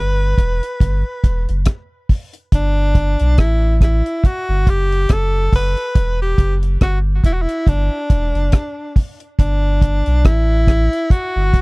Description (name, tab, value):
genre	roots reggae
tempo	70 BPM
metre	4/4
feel	swing 58% on 16ths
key	G major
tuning	A4 = 441 Hz
part	breathy tenor saxophone	melody	0.0-11.6 s	D4 to B4	-21 LUFS	equal	tape echo
part	warm sub bass	bass	0.0-11.6 s	E1 to B1	-16 LUFS	equal	none
part	deep reggae drum kit	drums	0.4-11.6 s	hi-hat, kick drum, rim click	-12 LUFS	equal	none
room	little or no reverb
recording	dry, close 1970s-style studio recording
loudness	-14 LUFS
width	side -29 dB against mid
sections	0.0-11.6 A section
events	none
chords	0.0 Em; 2.5 G5; 6.0 Em; 9.4 G5